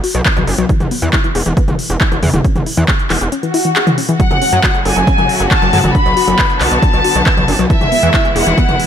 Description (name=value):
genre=uplifting trance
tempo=137 BPM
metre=4/4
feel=straight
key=unclear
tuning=A4 = 441 Hz
part: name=analog pluck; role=arpeggios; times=0.0-8.8 s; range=E3 to B4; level=-19 LUFS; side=left 4 dB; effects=chorus, sidechain pumping, ping-pong delay
part: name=big-room dance drum kit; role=drums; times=0.0-8.9 s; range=handclaps, hi-hat, toms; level=-18 LUFS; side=equal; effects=sidechain pumping on hats, sidechain pumping on toms
part: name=gritty driven synth bass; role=bass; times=0.1-8.8 s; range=E1 to F#2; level=-17 LUFS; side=right 1 dB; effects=distortion, sidechain pumping
part: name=electronic kick drum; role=drums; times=0.3-8.7 s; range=none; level=-14 LUFS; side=right 1 dB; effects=overdrive
part: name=swell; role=sound effects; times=3.4-4.2 s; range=none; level=-21 LUFS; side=right 1 dB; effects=none
part: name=rich studio violin section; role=second line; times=4.2-8.9 s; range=E5 to B5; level=-15 LUFS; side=left 1 dB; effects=ping-pong delay
part: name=clear studio string section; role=sustained chords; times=4.2-8.9 s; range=B2 to F#4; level=-20 LUFS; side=equal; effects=sidechain pumping
room=digital ambience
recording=none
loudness=-11 LUFS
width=side -9 dB against mid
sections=0.0-8.9 A section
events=filter sweep on synth pluck 0.0-8.9; swell 3.4-4.2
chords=0.0 B5; 0.7 N.C.; 4.2 F#m; 5.9 Bm; 7.7 E